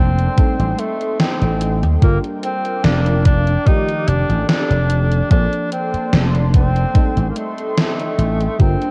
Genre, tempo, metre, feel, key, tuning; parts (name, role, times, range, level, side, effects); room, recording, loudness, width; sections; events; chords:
vaporwave; 73 BPM; 4/4; swing 53% on 16ths; A4 = 437 Hz
mellow tenor saxophone; melody; 0.0-8.9 s; A3 to Eb4; -25 LUFS; equal; analog delay
mellow FM electric piano; accompaniment; 0.0-8.9 s; Eb3 to D5; -27 LUFS; equal; phaser, analog chorus
lush unison pad; sustained chords; 0.0-8.9 s; Bb3 to D6; -32 LUFS; equal; chorus
vintage slap bass; bass; 0.0-8.7 s; F1 to Eb2; -19 LUFS; equal
gated 80s digital drum machine; drums; 0.2-8.9 s; hi-hat, snare drum; -23 LUFS; equal; gated reverb, gated reverb snare, overdrive
electronic kick drum; drums; 0.4-8.8 s; -16 LUFS; equal; overdrive
digital ambience; cassette tape; -17 LUFS; mono
0.0-8.9 A section
0.4 Am7b5; 2.0 Gm7; 3.7 F13; 5.3 Bbmaj9; 7.0 Am7b5